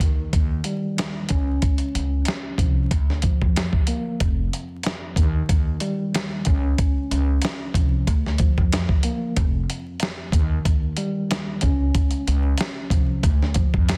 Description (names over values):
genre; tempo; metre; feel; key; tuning
hip hop, boom-bap hip-hop; 93 BPM; 4/4; swing 55% on 16ths; unclear; A4 = 441 Hz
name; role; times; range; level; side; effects
mellow tine electric piano; accompaniment; 0.0-14.0 s; Db2 to Db4; -31 LUFS; equal; cassette tape, high-pass filter, low-pass filter
upright bass; bass; 0.0-14.0 s; F1 to F2; -26 LUFS; equal; none
dusty soul sampler-style drum kit; drums; 0.0-14.0 s; hi-hat, kick drum, snare drum; -24 LUFS; equal; none
room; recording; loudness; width
digital ambience; dense, heavily limited modern master, vinyl crackle; -22 LUFS; mono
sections
0.0-14.0 A section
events
none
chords
0.0 Eb; 1.3 Db; 2.9 Bb/D; 4.2 N.C.; 5.2 Eb; 6.5 Db; 8.1 Bb/D; 9.4 N.C.; 10.3 Eb; 11.6 Db; 13.2 Bb/D (rootless)